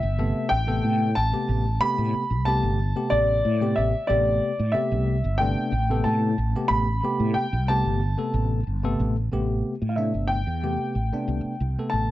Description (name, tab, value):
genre	electric jazz fusion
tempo	92 BPM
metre	4/4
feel	straight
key	A minor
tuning	A4 = 438 Hz
part	dark baby grand piano	melody	0.0-12.1 s	D5 to B5	-26 LUFS	equal	none
part	mellow fretless electric bass	bass	0.0-12.1 s	G1 to A2	-24 LUFS	equal	ensemble chorus
part	bell-like tine electric piano	accompaniment	0.2-12.1 s	C3 to A4	-28 LUFS	left 1 dB	medium stereo tremolo
room	moderate club reverb, RT60 0.5 s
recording	nothing above 7.8 kHz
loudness	-21 LUFS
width	side -15 dB against mid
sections	0.0-9.3 A section; 9.3-12.1 B section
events	none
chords	0.0 Am9